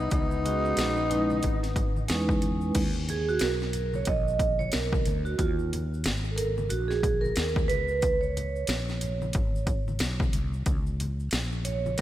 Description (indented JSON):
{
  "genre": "hip hop, jazz-hop",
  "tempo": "91 BPM",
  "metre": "4/4",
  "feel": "swing 61% on 16ths",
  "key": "Eb phrygian",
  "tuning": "A4 = 440 Hz",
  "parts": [
    { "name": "growling tenor saxophone", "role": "melody", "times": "0.0-2.1 s", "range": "Eb4", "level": "-30 LUFS", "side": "left 1 dB", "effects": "slapback echo, analog delay" },
    { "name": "growling trombone", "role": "second line", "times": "0.0-2.1 s", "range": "Cb4", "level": "-37 LUFS", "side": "left 6 dB", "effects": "slapback echo, analog delay" },
    { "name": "mellow fretless electric bass", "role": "bass", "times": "0.0-12.0 s", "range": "Ab1 to Fb2", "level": "-31 LUFS", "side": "equal", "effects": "none" },
    { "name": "techno drum kit", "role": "drums", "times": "0.1-12.0 s", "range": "crash cymbal, hi-hat, kick drum, snare drum", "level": "-29 LUFS", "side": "equal", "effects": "none" },
    { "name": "tube shaker and congas", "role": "percussion", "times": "0.1-12.0 s", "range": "none", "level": "-42 LUFS", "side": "left 4 dB", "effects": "none" },
    { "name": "vibraphone with soft mallets", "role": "accompaniment", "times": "0.4-12.0 s", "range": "Ab3 to Eb5", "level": "-30 LUFS", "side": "right 4 dB", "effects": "slapback echo" }
  ],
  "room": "moderate lush hall reverb, RT60 2.8 s",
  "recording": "big arena sound",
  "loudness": "-25 LUFS",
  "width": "side -13 dB against mid",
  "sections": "0.0-2.8 A section; 2.8-12.0 B section",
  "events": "vibraphone solo 2.8-12.0",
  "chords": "0.0 Dbm9; 2.8 Eb5; 7.7 Db5"
}